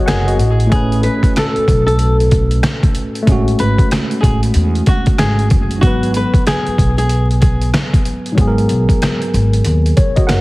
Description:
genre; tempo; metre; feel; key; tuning
hip hop, boom-bap hip-hop; 94 BPM; 4/4; swing 63% on 16ths; unclear; A4 = 440 Hz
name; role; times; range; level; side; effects
tine electric piano; accompaniment; 0.0-10.4 s; G#2 to F#5; -19 LUFS; equal; overdrive, medium stereo tremolo, cassette tape, high-pass filter, low-pass filter
flamenco guitar; melody; 0.1-7.3 s; F#4 to B4; -20 LUFS; left 1 dB; high-pass filter, low-pass filter, tape echo
upright bass; bass; 0.1-10.4 s; F#1 to E2; -15 LUFS; equal; none
trip hop sampler-style drum kit; drums; 0.1-10.4 s; hi-hat, kick drum, rim click, snare drum; -14 LUFS; equal; none
room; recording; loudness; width
digital ambience; heavily compressed radio sound, multiband compression, vinyl crackle; -11 LUFS; side -21 dB against mid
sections
0.0-10.4 A section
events
none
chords
0.4 Amaj9; 5.8 G#m9

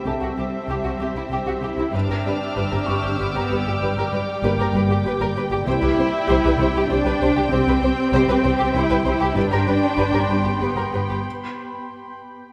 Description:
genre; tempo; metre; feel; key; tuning
cinematic, suspense film score; 97 BPM; 3/4; straight; unclear; A4 = 440 Hz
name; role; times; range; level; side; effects
muted studio violin section; melody; 0.0-11.2 s; E5 to G5; -34 LUFS; equal; none
shimmering ambient pad; sustained chords; 0.0-11.3 s; B3 to G5; -32 LUFS; equal; chorus, built-in reverb
muted studio cello section; bass; 0.0-11.3 s; G3 to E4; -26 LUFS; equal; none
felt-muted upright piano; texture; 0.0-9.4 s; A#3 to C#6; -35 LUFS; equal; none
muted studio violin section; second line; 0.1-11.2 s; E4 to C5; -30 LUFS; equal; none
muted studio viola section; accompaniment; 0.1-11.2 s; G4; -30 LUFS; equal; none
muted studio cello section; riff; 0.1-11.1 s; G2 to C4; -30 LUFS; equal; none
muted studio double bass section; bass; 0.1-11.2 s; G1 to C2; -29 LUFS; equal; none
muted studio violin section; texture; 1.9-5.3, 9.4-12.5 s; B5 to E#6; -34 LUFS; equal; none
room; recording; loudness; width
moderate scoring stage reverb, RT60 1.9 s; none; -21 LUFS; mono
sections
0.0-12.5 A section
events
break 11.2-12.5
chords
0.0 C; 1.9 G; 5.7 C; 9.4 G; 11.2 Cmaj7(no3)

